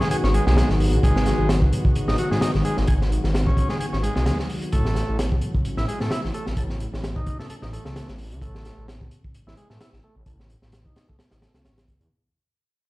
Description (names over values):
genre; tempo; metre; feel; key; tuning
breakbeat, breaks; 130 BPM; 4/4; swing 55% on 16ths; unclear; A4 = 436 Hz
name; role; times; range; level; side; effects
lush unison pad; sustained chords; 0.0-12.1 s; D#3 to F#4; -29 LUFS; left 1 dB; chorus, vintage 12-bit sampler grit, sidechain pumping
combo organ; riff; 0.0-11.7 s; F#3 to A4; -29 LUFS; equal; low-pass filter, digital delay
crunchy breakbeat drum kit; drums; 0.0-12.1 s; hi-hat, kick drum, snare drum; -24 LUFS; equal; none
dark detuned saw bass; bass; 0.2-12.1 s; G#1 to A2; -23 LUFS; equal; none
room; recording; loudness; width
light reverb; played on a big sound system in a bare room, large studio reverb, vinyl crackle; -20 LUFS; side -19 dB against mid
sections
0.0-12.1 A section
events
fade-out 0.0-12.1; filter sweep on transistor combo organ 0.0-12.1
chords
0.0 G#m7; 4.7 A6